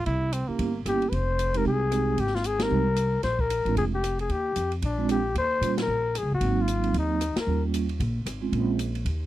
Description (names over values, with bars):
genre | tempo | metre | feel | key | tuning
jazz, small-group swing and bop | 227 BPM | 4/4 | swing 59% on 8ths | Eb mixolydian | A4 = 438 Hz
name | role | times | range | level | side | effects
breathy trumpet | second line | 0.0-0.8 s | Bb3 to E4 | -30 LUFS | right 2 dB | none
upright bass | bass | 0.0-9.3 s | F1 to Bb2 | -28 LUFS | equal | none
open jazz drum kit | drums | 0.1-9.1 s | hi-hat, kick drum, ride cymbal, rim click, snare drum | -35 LUFS | equal | none
vibraphone with soft mallets | accompaniment | 0.5-8.8 s | Gb3 to G4 | -28 LUFS | right 6 dB | none
trumpet with bucket mute | melody | 0.9-7.6 s | D4 to C5 | -27 LUFS | left 3 dB | none
room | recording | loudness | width
little or no reverb | dry, close 1970s-style studio recording | -24 LUFS | side -14 dB against mid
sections
0.0-5.3 A section; 5.3-9.3 A section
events
band accent 2.6, 5.7, 7.3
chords
0.1 C7b9; 1.1 Fm7; 3.2 Bb5; 4.3 Ebadd9; 4.8 Bb9; 5.3 Eb9; 6.4 Ab9; 7.5 Eb9; 8.5 Bbm7